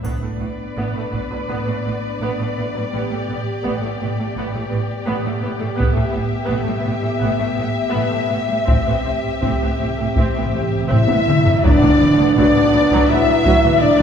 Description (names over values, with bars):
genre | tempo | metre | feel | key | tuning
cinematic, epic orchestral film score | 83 BPM | 4/4 | straight | unclear | A4 = 443 Hz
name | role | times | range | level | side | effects
warm symphonic violin section | melody | 0.0-14.0 s | D5 to E5 | -25 LUFS | left 5 dB | none
rich symphonic violin section | second line | 0.0-14.0 s | G4 to E5 | -26 LUFS | left 2 dB | none
rich symphonic viola section | accompaniment | 0.0-14.0 s | D3 to C4 | -26 LUFS | right 2 dB | none
rich studio double bass section | bass | 0.0-13.9 s | A1 | -28 LUFS | right 2 dB | none
rich symphonic cello section | bass | 0.0-14.0 s | A2 | -25 LUFS | right 2 dB | none
taiko ensemble | drums | 0.0-14.0 s | none | -20 LUFS | equal | none
triangle, cymbal swell and tam-tam | percussion | 0.0-1.5, 8.7-14.0 s | none | -30 LUFS | equal | none
mellow French horn section | sustained chords | 0.1-14.0 s | B3 to G4 | -22 LUFS | equal | none
timpani | percussion | 8.7-12.7 s | A2 | -26 LUFS | right 1 dB | none
mellow silver concert flute | second line | 10.9-14.0 s | D5 to E5 | -26 LUFS | left 2 dB | none
mellow trumpet section | stabs | 10.9-14.0 s | D5 to E5 | -23 LUFS | left 1 dB | none
warm trombone section | sustained chords | 11.6-13.3 s | F#3 to B3 | -29 LUFS | right 1 dB | none
impact | sound effects | 11.8-14.0 s | none | -32 LUFS | equal | none
room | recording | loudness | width
wet concert hall reverb, RT60 1.7 s | heard from further back in the room | -16 LUFS | side -8 dB against mid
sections
0.0-11.6 A section; 11.6-14.0 B section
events
timpani fill 8.7-11.6; drum fill 10.9-11.6; band accent 11.6-12.4; impact 11.6-14.0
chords
0.0 Bm/A; 2.9 Gadd9/A; 8.7 Am7; 11.6 Bm/A